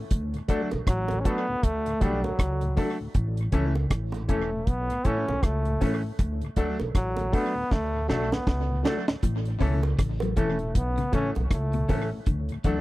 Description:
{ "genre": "roots reggae", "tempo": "79 BPM", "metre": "4/4", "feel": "swing 60% on 16ths", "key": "A major", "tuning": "A4 = 440 Hz", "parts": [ { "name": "mellow tonewheel organ", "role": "accompaniment", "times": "0.0-12.8 s", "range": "D2 to D4", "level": "-36 LUFS", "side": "left 2 dB", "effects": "chorus vibrato, slow rotary speaker, tape echo" }, { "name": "upright bass", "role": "bass", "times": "0.1-12.8 s", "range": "E1 to D2", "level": "-28 LUFS", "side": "equal", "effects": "none" }, { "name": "deep reggae drum kit", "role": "drums", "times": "0.1-12.8 s", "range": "hi-hat, kick drum, rim click, snare drum", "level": "-26 LUFS", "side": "equal", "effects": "tape echo" }, { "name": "electric guitar with an envelope filter", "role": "accompaniment", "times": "0.5-12.8 s", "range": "E3 to D4", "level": "-35 LUFS", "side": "right 4 dB", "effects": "dub echo" }, { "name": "clear grand piano", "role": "stabs", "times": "0.5-12.8 s", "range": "C#4 to A4", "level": "-32 LUFS", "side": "left 6 dB", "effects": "none" }, { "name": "bongos", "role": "percussion", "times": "0.7-12.1 s", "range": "none", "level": "-36 LUFS", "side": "right 6 dB", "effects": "none" }, { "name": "bright trombone", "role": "melody", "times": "0.9-12.1 s", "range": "F#3 to C#4", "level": "-31 LUFS", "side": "equal", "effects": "dub echo" }, { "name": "clean electric guitar", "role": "arpeggios", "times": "9.2-12.8 s", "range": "A2 to F#3", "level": "-33 LUFS", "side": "left 5 dB", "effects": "none" } ], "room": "little or no reverb", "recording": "dry, close 1970s-style studio recording", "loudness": "-24 LUFS", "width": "side -18 dB against mid", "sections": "0.0-12.8 A section", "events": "drum fill 7.7-9.2", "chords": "0.1 D; 3.2 A; 6.2 D; 9.2 A; 12.3 D" }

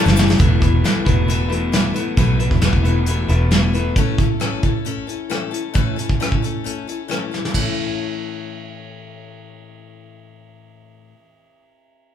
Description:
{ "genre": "folk rock and heartland rock", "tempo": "134 BPM", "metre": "4/4", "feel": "straight", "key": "A major", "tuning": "A4 = 440 Hz", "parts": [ { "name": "picked steel-string acoustic guitar", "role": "accompaniment", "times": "0.0-11.2 s", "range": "A2 to B4", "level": "-25 LUFS", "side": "left 8 dB", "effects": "none" }, { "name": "electric guitar through a small old amp", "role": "riff", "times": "0.0-4.0 s", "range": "E2 to E4", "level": "-23 LUFS", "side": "left 1 dB", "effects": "none" }, { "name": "fingered electric bass", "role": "bass", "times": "0.1-3.9 s", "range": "E1 to B1", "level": "-18 LUFS", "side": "equal", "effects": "none" }, { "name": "soft brush drum kit", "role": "drums", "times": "0.1-7.6 s", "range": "hi-hat, kick drum, ride cymbal, rim click, snare drum", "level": "-19 LUFS", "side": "right 1 dB", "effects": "none" } ], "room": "light reverb", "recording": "band playing live in one room", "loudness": "-16 LUFS", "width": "side -9 dB against mid", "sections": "0.4-7.5 A section; 7.5-11.1 B section", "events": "drum fill 0.0-0.4, 7.3", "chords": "0.4 Esus4; 4.0 A" }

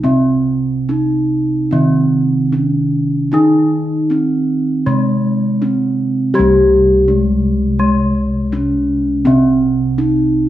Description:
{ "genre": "gamelan", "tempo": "70-83 BPM", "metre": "4/4", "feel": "straight", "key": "C pelog", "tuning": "A4 = 440 Hz", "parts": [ { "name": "gamelan-type bronze metallophone", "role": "melody", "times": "0.0-10.5 s", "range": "Ab3 to G4", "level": "-15 LUFS", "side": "equal", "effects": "none" }, { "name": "gamelan-type bronze metallophone", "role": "accompaniment", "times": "0.0-10.5 s", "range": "C3 to Ab3", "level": "-19 LUFS", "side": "right 1 dB", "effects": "none" }, { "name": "gamelan-type bossed gongs", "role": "bass", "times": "0.0-10.5 s", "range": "C2 to G4", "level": "-17 LUFS", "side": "left 1 dB", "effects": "none" } ], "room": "moderate recital hall reverb, RT60 1.3 s", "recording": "none", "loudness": "-12 LUFS", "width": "side -13 dB against mid", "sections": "0.0-6.3 A section; 6.3-10.5 B section", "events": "none", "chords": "none" }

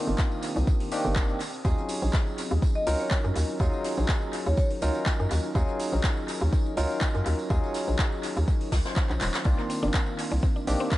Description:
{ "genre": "deep house", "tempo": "123 BPM", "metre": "4/4", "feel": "swing 53% on 16ths", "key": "unclear", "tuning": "A4 = 440 Hz", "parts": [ { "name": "barky tine electric piano", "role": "stabs", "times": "0.0-11.0 s", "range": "Eb3 to C5", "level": "-31 LUFS", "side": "equal", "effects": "medium stereo tremolo, sidechain pumping, tape echo" }, { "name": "granular cloud pad", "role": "texture", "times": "0.0-11.0 s", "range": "C4 to Eb6", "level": "-40 LUFS", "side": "left 2 dB", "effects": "none" }, { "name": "hollow knocking FM bass", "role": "bass", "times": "0.1-10.8 s", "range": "Eb1 to Gb2", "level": "-26 LUFS", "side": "equal", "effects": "sidechain pumping" }, { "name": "tambourine", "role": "percussion", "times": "0.1-11.0 s", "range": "none", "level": "-43 LUFS", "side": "right 3 dB", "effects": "tape echo" }, { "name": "deep house drum kit", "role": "drums", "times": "0.2-11.0 s", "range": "handclaps, hi-hat", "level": "-35 LUFS", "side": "equal", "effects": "overdrive, tape echo" }, { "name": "electronic kick drum", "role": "drums", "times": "0.2-11.0 s", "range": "none", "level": "-26 LUFS", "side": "equal", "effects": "overdrive" }, { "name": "jazz brush drum kit", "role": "drums", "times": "0.2-11.0 s", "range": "hi-hat, snare drum", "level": "-42 LUFS", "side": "left 1 dB", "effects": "none" }, { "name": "marimba with medium mallets", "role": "melody", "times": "2.8-4.7 s", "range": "Db5 to Eb5", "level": "-33 LUFS", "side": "equal", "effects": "vintage 12-bit sampler grit, tape echo" }, { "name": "mallet-like synth pluck", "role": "arpeggios", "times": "9.6-10.9 s", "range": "Bb3 to D4", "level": "-34 LUFS", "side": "left 1 dB", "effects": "chorus, sidechain pumping, tape echo" } ], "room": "light reverb, small room ambience", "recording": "echo-heavy mix, nothing above 10.5 kHz", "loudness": "-24 LUFS", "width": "side -16 dB against mid", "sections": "0.0-11.0 A section", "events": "drum fill 9.2", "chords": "0.0 Cm11; 1.4 Ebm11; 9.5 Cm11" }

